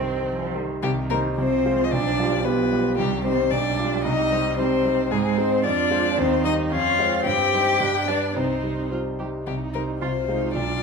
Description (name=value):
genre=quick classical-period movement for piano quartet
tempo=111 BPM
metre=2/4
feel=straight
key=C minor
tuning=A4 = 440 Hz
part: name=warm violin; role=melody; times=0.0-10.8 s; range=G4 to G5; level=-24 LUFS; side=left 9 dB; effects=none
part: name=warm cello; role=second line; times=0.0-10.8 s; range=Eb3 to G4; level=-26 LUFS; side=right 6 dB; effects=none
part: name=clear concert grand piano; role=accompaniment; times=0.0-10.8 s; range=B1 to Db5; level=-25 LUFS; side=right 1 dB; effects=none
part: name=rich viola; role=accompaniment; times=0.0-10.8 s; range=Eb3 to G4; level=-30 LUFS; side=right 4 dB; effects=none
room=moderate recital hall reverb, RT60 1.6 s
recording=minimal, uncompressed stereo recording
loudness=-20 LUFS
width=side -5 dB against mid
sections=0.8-9.5 A section; 9.5-10.8 A section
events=none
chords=0.0 Cm; 1.4 Fm/C; 1.9 G7/B; 3.0 Cm; 3.5 G7/B; 4.0 Cm; 5.1 Ab; 5.6 Fm; 6.2 Cm/Eb; 6.7 Db/F; 7.3 Cm/G; 7.8 G; 8.4 Cm; 10.0 Fm/C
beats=0.28 | 0.83 1.38 | 1.92 2.45 | 2.98 3.52 | 4.05 4.58 | 5.11 5.64 | 6.17 6.71 | 7.25 7.80 | 8.35 8.91 | 9.47 10.01 | 10.55